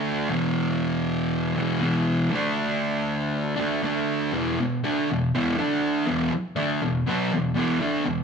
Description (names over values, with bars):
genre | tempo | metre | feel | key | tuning
rock | 120 BPM | 4/4 | straight | unclear | A4 = 440 Hz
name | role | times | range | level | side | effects
fuzz guitar | solo | 0.0-8.2 s | E2 to D4 | -22 LUFS | equal | distortion
room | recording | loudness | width
moderate large studio reverb, RT60 1.1 s | band playing live in one room | -22 LUFS | side -6 dB against mid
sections
0.0-4.3 A section; 4.3-8.2 B section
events
none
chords
0.3 E5; 2.3 D5; 4.3 E5; 5.6 D5; 6.1 E5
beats
| 0.30 0.81 1.31 1.82 | 2.32 2.82 3.33 3.83 | 4.33 4.83 5.33 5.83 | 6.33 6.82 7.32 7.82